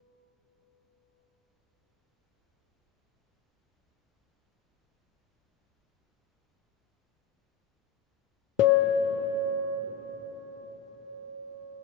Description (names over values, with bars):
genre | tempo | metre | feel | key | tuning
world meditative, free-time meditation music | free time | none | none | unclear | A4 = 440 Hz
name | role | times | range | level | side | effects
handpan | solo | 0.0-11.8 s | G#4 to C#5 | -26 LUFS | left 6 dB | none
room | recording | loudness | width
wet cathedral reverb, RT60 6.9 s | in a vast, echoing space, nothing above 7.7 kHz | -23 LUFS | side -2 dB against mid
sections
0.0-7.6 A section; 7.6-11.8 A section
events
none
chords
none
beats
free time